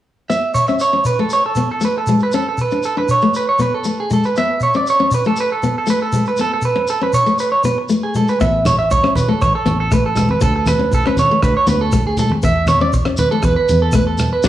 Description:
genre	highlife guitar band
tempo	119 BPM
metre	4/4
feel	straight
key	A major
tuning	A4 = 438 Hz
part	nylon-string guitar	accompaniment	0.3-14.5 s	F#3 to D4	-20 LUFS	left 4 dB	none
part	electric guitar at the edge of break-up	arpeggios	0.3-14.5 s	F#4 to E5	-16 LUFS	right 3 dB	tape echo, plate reverb
part	shekere	percussion	0.3-14.5 s	none	-24 LUFS	left 1 dB	none
part	fingered electric bass	bass	8.4-14.5 s	A1 to E2	-19 LUFS	equal	none
part	warm soul drum kit	drums	8.4-14.5 s	hi-hat, kick drum, rim click, snare drum	-20 LUFS	equal	none
part	congas	percussion	8.7-14.5 s	none	-21 LUFS	equal	none
room	moderate small room ambience, RT60 0.5 s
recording	studio reverb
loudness	-13 LUFS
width	side -13 dB against mid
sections	0.3-8.4 A section; 8.4-14.5 B section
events	none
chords	0.3 A; 2.3 D5; 4.4 Esus4 (rootless); 6.4 Amaj9; 8.4 A; 10.4 D5; 12.4 Esus4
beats	| 0.30 0.81 1.31 1.82 | 2.33 2.84 3.34 3.85 | 4.36 4.87 5.37 5.88 | 6.39 6.89 7.40 7.91 | 8.41 8.92 9.42 9.93 | 10.43 10.93 11.43 11.94 | 12.44 12.94 13.44 13.94 | 14.44

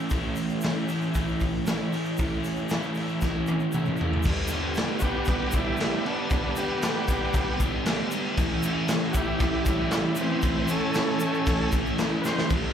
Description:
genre	garage rock duo or trio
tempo	116 BPM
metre	4/4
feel	straight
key	A major, A mixolydian from 4.2 s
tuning	A4 = 439 Hz
part	crunchy overdriven guitar	riff	0.0-12.7 s	G2 to E4	-27 LUFS	equal	spring reverb, slapback echo
part	raw garage drum kit	drums	0.1-12.6 s	crash cymbal, hi-hat, kick drum, snare drum, toms	-27 LUFS	equal	none
part	tube shaker	percussion	0.1-12.6 s	none	-43 LUFS	right 1 dB	none
part	overdriven combo organ	melody	5.0-12.5 s	E3 to C5	-29 LUFS	right 1 dB	slapback echo
room	light reverb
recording	live gig heard through the venue's PA, club reverb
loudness	-24 LUFS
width	side -8 dB against mid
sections	0.0-4.2 A section; 4.2-12.7 B section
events	drum fill 3.2-4.2, 12.2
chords	0.0 A; 4.2 G; 8.4 A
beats	| 0.12 0.63 1.15 1.67 | 2.18 2.70 3.22 3.73 | 4.25 4.76 5.28 5.80 | 6.31 6.83 7.34 7.86 | 8.37 8.89 9.40 9.92 | 10.44 10.95 11.47 11.98 | 12.50

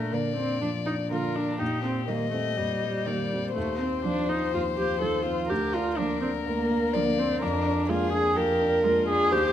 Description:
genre	quick classical-period movement for piano quartet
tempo	124 BPM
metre	4/4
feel	rubato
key	Bb major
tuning	A4 = 439 Hz
part	dark violin	melody	0.0-9.5 s	F4 to Eb5	-31 LUFS	left 9 dB	none
part	dark baby grand piano	accompaniment	0.0-9.5 s	D2 to D4	-30 LUFS	equal	none
part	dark viola	accompaniment	0.0-9.5 s	G3 to Bb4	-27 LUFS	right 2 dB	none
part	rich cello	second line	0.1-9.2 s	D3 to Ab3	-37 LUFS	right 5 dB	none
room	moderate recital hall reverb, RT60 1.3 s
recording	close, detailed microphones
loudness	-24 LUFS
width	side -10 dB against mid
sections	0.0-9.5 A section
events	none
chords	0.0 Bb; 1.6 Cm/Bb; 3.6 F5/Eb; 5.5 Bb/D; 7.4 Bb7/F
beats	0.13 0.62 1.12 | 1.61 2.10 2.58 3.08 | 3.56 4.05 4.54 5.02 | 5.50 5.98 6.46 6.94 | 7.42 7.89 8.37 8.85 | 9.32

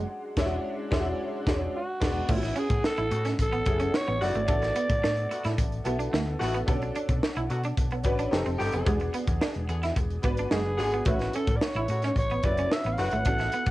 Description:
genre	polished 1980s jazz-funk pop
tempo	110 BPM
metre	4/4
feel	straight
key	unclear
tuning	A4 = 440 Hz
part	bright baby grand piano	accompaniment	0.0-13.7 s	F#3 to B4	-33 LUFS	left 1 dB	ensemble chorus, cassette tape
part	electric guitar at the edge of break-up	riff	0.0-13.6 s	G#3 to E4	-33 LUFS	right 3 dB	wide subtle chorus, cassette tape
part	hollow-body short-scale fingered electric bass	bass	0.0-13.7 s	E1 to B2	-31 LUFS	equal	none
part	crisp fusion drum kit	drums	0.4-13.7 s	crash cymbal, hi-hat, kick drum, snare drum	-29 LUFS	equal	cassette tape
part	growling alto saxophone	melody	1.8-5.9, 10.5-13.7 s	E4 to F#5	-29 LUFS	right 1 dB	cassette tape
part	mellow horn section	second line	3.1-13.2 s	B2 to G#4	-33 LUFS	left 2 dB	cassette tape
room	light reverb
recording	home recording on cassette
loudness	-25 LUFS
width	side -17 dB against mid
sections	0.0-2.3 A section; 2.3-13.7 B section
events	band accent 0.1-2.3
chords	0.0 E13; 1.7 E7; 2.3 A6; 4.5 D69/A; 6.7 Bm7; 8.3 F9; 8.9 E9; 11.1 A6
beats	| 0.10 0.65 1.20 1.75 | 2.29 2.84 3.39 3.94 | 4.49 5.03 5.58 6.13 | 6.68 7.22 7.77 8.32 | 8.87 9.42 9.96 10.51 | 11.06 11.61 12.16 12.71 | 13.25

